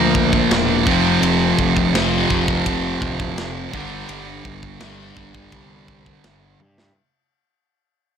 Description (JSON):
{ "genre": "heavy metal", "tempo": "84 BPM", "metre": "4/4", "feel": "straight", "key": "unclear", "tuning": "A4 = 440 Hz", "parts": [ { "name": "high-gain distorted guitar", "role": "riff", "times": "0.0-6.6 s", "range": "F2 to Bb3", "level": "-21 LUFS", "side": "right 12 dB", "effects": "distortion" }, { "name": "sludgy distorted guitar", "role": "riff", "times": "0.0-6.6 s", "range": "F2 to Bb3", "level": "-22 LUFS", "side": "left 9 dB", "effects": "overdrive" }, { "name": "fuzz picked electric bass", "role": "bass", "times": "0.0-6.9 s", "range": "D1 to G2", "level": "-25 LUFS", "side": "equal", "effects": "overdrive" }, { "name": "tight metal drum kit", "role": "drums", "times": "0.1-7.0 s", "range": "kick drum, ride cymbal, snare drum, toms", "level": "-23 LUFS", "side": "equal", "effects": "none" } ], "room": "light reverb", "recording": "blown-out, overdriven recording, overdrive", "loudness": "-15 LUFS", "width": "side -7 dB against mid", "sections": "0.0-7.0 A section", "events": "fade-out 0.0-7.0; drum fill 6.6-7.0", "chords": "0.0 Bb; 0.9 F5; 3.7 G5" }